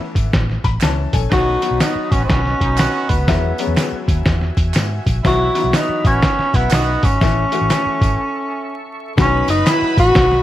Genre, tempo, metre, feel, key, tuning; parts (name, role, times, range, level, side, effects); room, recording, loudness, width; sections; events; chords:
uptempo 1960s-style soul; 122 BPM; 4/4; swing 63% on 8ths; B mixolydian; A4 = 440 Hz
breathy tenor saxophone; melody; 0.0-10.4 s; B3 to F#4; -18 LUFS; equal
bright upright piano; accompaniment; 0.0-9.9 s; D#3 to B5; -24 LUFS; left 8 dB
vintage muted fingered electric bass; bass; 0.0-10.4 s; F#1 to G#2; -20 LUFS; equal
lo-fi sampler-style drum kit; drums; 0.2-10.4 s; hi-hat, kick drum, snare drum; -17 LUFS; equal
tambourine and handclaps; percussion; 0.2-10.1 s; -32 LUFS; right 2 dB
clear horn section; second line; 1.3-7.1 s; F#3 to F#4; -26 LUFS; right 8 dB
tonewheel organ; sustained chords; 1.3-10.4 s; F#4 to C#6; -31 LUFS; equal; chorus vibrato, wide subtle chorus
rich studio violin section; second line; 9.2-10.4 s; B4 to B5; -24 LUFS; right 3 dB
light reverb; 1960s-style stereo with parts hard left and right, vinyl crackle; -14 LUFS; side -13 dB against mid
0.0-9.2 A section; 9.2-10.4 B section
upright piano fill 0.3-1.3; break 8.2-9.2
0.0 A; 1.3 B; 3.3 Eadd9; 5.2 Bsus4; 7.2 A; 9.2 B